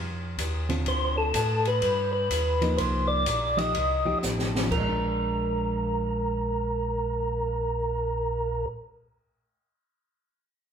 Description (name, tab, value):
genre	soul jazz organ trio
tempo	125 BPM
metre	4/4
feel	swing 66% on 8ths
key	Bb mixolydian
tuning	A4 = 440 Hz
part	tonewheel organ	bass	0.0-8.7 s	A1 to A2	-30 LUFS	equal	slow rotary speaker
part	open jazz drum kit	drums	0.4-4.9 s	crash cymbal, hi-hat, kick drum, ride cymbal, snare drum	-32 LUFS	left 1 dB	none
part	hollow-body jazz guitar	accompaniment	0.7-8.9 s	D3 to A4	-32 LUFS	right 1 dB	none
part	percussive tonewheel organ	melody	0.9-8.7 s	A4 to Eb5	-27 LUFS	equal	slow rotary speaker
room	wet large studio reverb, RT60 0.9 s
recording	band playing live in one room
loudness	-24 LUFS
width	side -7 dB against mid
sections	0.0-4.7 A section; 4.7-8.6 B section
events	drum fill 4.2-4.7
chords	0.0 F7; 0.9 Dm7; 1.8 G7b13; 2.8 Cm11; 3.7 F9; 4.7 Bb7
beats	0.38 | 0.86 1.34 1.82 2.31 | 2.79 3.27 3.75 4.23 | 4.71 5.19 5.67 6.15 | 6.63 7.11 7.59 8.07